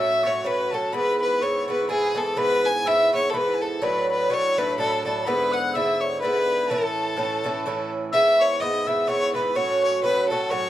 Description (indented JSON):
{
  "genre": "celtic folk, Celtic waltz",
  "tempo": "125 BPM",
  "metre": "3/4",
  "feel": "swing 56% on 8ths",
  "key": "A major",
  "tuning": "A4 = 440 Hz",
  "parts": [
    { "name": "clear fiddle", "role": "melody", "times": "0.0-10.7 s", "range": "G#4 to G#5", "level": "-22 LUFS", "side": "equal", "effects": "none" },
    { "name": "reedy tin whistle", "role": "second line", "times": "0.0-10.7 s", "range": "G#5 to F#6", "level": "-29 LUFS", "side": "left 5 dB", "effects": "none" },
    { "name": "Irish bouzouki", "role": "accompaniment", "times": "0.0-10.7 s", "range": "G#2 to F#4", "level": "-25 LUFS", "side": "right 2 dB", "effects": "none" }
  ],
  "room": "moderate studio reverb, RT60 0.5 s",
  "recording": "dark, warm production",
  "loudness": "-20 LUFS",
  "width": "side -13 dB against mid",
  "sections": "0.0-8.1 A section; 8.1-10.7 B section",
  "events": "none",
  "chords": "0.0 F#m; 0.9 E; 3.8 Dadd9; 5.3 E7; 6.7 A; 8.1 E; 9.6 F#m",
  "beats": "0.44 | 0.92 1.41 1.89 | 2.37 2.85 3.33 | 3.81 4.29 4.77 | 5.25 5.73 6.21 | 6.69 7.17 7.65 | 8.12 8.60 9.08 | 9.55 10.03 10.50"
}